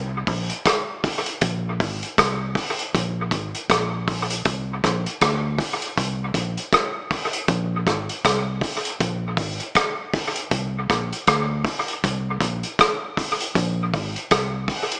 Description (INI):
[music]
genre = roots reggae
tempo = 79 BPM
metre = 4/4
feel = swing 58% on 16ths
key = unclear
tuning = A4 = 441 Hz
[part]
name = vintage muted fingered electric bass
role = bass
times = 0.0-14.7 s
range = Ab1 to D2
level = -28 LUFS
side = equal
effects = none
[part]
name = vintage drum kit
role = drums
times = 0.3-15.0 s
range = hi-hat, kick drum, rim click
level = -25 LUFS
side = equal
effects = dub echo
[sound]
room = light reverb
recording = small speaker sound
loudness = -23 LUFS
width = mono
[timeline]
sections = 0.0-15.0 A section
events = none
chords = none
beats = 0.66 | 1.42 2.18 2.94 3.70 | 4.46 5.21 5.97 6.73 | 7.49 8.25 9.00 9.76 | 10.52 11.28 12.04 12.79 | 13.55 14.31